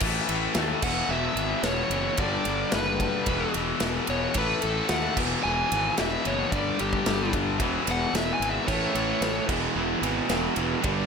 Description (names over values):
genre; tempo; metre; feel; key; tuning
quiet-loud alternative rock; 111 BPM; 4/4; straight; unclear; A4 = 439 Hz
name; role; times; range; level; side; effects
crunchy overdriven guitar; riff; 0.0-11.1 s; E2 to A3; -30 LUFS; left 14 dB; spring reverb
tight distorted guitar; riff; 0.0-11.1 s; E2 to A3; -30 LUFS; right 1 dB; distortion
fuzz fingered electric bass; bass; 0.0-11.0 s; E1 to D#2; -32 LUFS; right 1 dB; overdrive
big rock drum kit; drums; 0.0-11.0 s; crash cymbal, kick drum, ride cymbal, snare drum; -30 LUFS; right 1 dB; none
bluesy overdriven lead guitar; melody; 0.8-9.4 s; G4 to G#5; -29 LUFS; equal; distortion, slapback echo
overdriven electric guitar; riff; 8.7-11.1 s; E2 to A3; -29 LUFS; right 15 dB; none
room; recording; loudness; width
light reverb; none; -23 LUFS; side -6 dB against mid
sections
0.0-11.1 A section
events
lead electric guitar solo 0.0-11.1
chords
0.0 A5; 0.8 E; 2.2 G; 3.3 E5; 4.3 A5; 5.2 E; 6.5 G5; 7.6 E; 8.7 A; 9.5 E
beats
| 0.01 0.56 1.10 1.64 | 2.18 2.72 3.27 3.81 | 4.35 4.89 5.43 5.97 | 6.51 7.05 7.59 8.13 | 8.67 9.21 9.75 10.29 | 10.83